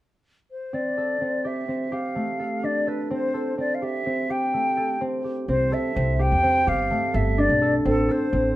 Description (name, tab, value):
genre	contemporary instrumental, chamber music in an uneven meter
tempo	253 BPM (eighths)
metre	5/8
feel	straight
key	C major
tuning	A4 = 440 Hz
part	mellow hollow silver concert flute	melody	0.5-8.6 s	A4 to G5	-24 LUFS	equal	none
part	concert harp	arpeggios	0.7-8.6 s	A3 to A4	-25 LUFS	equal	none
part	upright bass	bass	5.5-8.6 s	G1 to E2	-24 LUFS	equal	none
room	light reverb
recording	close, detailed microphones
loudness	-21 LUFS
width	side -15 dB against mid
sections	0.7-5.5 A section; 5.5-8.6 B section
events	none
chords	0.0 N.C.; 0.7 C6; 1.9 Gsus2; 5.5 C6; 6.7 G9; 7.9 Am7